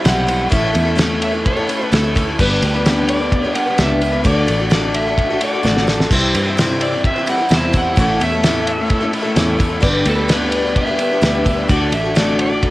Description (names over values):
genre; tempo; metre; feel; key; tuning
folk rock and heartland rock; 129 BPM; 4/4; straight; D major; A4 = 440 Hz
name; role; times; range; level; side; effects
overdriven slide guitar; melody; 0.0-12.7 s; A4 to A5; -22 LUFS; equal; tape echo
picked twelve-string acoustic guitar; accompaniment; 0.0-12.7 s; G2 to C5; -20 LUFS; left 2 dB; cassette tape
mellow tonewheel organ; sustained chords; 0.0-12.7 s; G4 to E6; -32 LUFS; right 1 dB; none
crunchy overdriven guitar; riff; 0.0-12.7 s; G2 to G4; -25 LUFS; right 1 dB; spring reverb, cassette tape
tambourine; percussion; 0.0-12.3 s; none; -39 LUFS; right 8 dB; none
fingered electric bass; bass; 0.1-12.7 s; G1 to G2; -21 LUFS; equal; none
cloth-damped thuddy drum kit; drums; 0.1-12.7 s; crash cymbal, kick drum, ride cymbal, snare drum; -18 LUFS; equal; cassette tape
room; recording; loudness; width
light reverb; home recording on cassette; -14 LUFS; side -17 dB against mid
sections
0.0-6.1 A section; 6.1-12.7 B section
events
drum fill 5.6-6.1; electric slide guitar solo 6.1-12.7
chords
0.0 C; 0.5 A; 2.4 G; 4.3 D; 6.1 C; 8.0 A; 9.8 G; 11.7 D